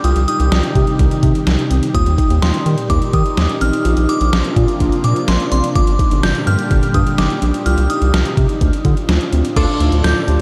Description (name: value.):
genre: synth-pop.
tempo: 126 BPM.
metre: 4/4.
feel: straight.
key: G minor.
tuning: A4 = 440 Hz.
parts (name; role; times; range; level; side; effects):
glassy synth bell; melody; 0.0-10.4 s; C6 to G6; -25 LUFS; equal; chorus, phaser, delay.
phased analog pad; sustained chords; 0.0-10.4 s; A2 to G4; -23 LUFS; equal; phaser, chorus.
mellow tine electric piano; arpeggios; 0.0-10.4 s; C4 to G4; -27 LUFS; equal; delay.
round analog bass; bass; 0.0-10.4 s; G1 to Eb3; -18 LUFS; equal; none.
detuned 8-bit digital drum machine; drums; 0.0-10.4 s; crash cymbal, hi-hat, kick drum, snare drum; -21 LUFS; equal; none.
funky polysynth comp; accompaniment; 9.6-10.4 s; D4 to A4; -24 LUFS; equal; chorus.
room: moderate huge ambient reverb, RT60 8.3 s.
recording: dreamy mix soaked in reverb.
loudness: -15 LUFS.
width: mono.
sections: 0.0-9.6 A section.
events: none.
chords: 0.0 Cm; 1.9 Eb; 3.9 Bbadd9; 5.8 Gm; 7.7 Cm; 8.6 Dm.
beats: | 0.04 0.52 0.99 1.47 | 1.95 2.42 2.90 3.37 | 3.85 4.33 4.80 5.28 | 5.75 6.23 6.71 7.18 | 7.66 8.14 8.61 9.09 | 9.56 10.04.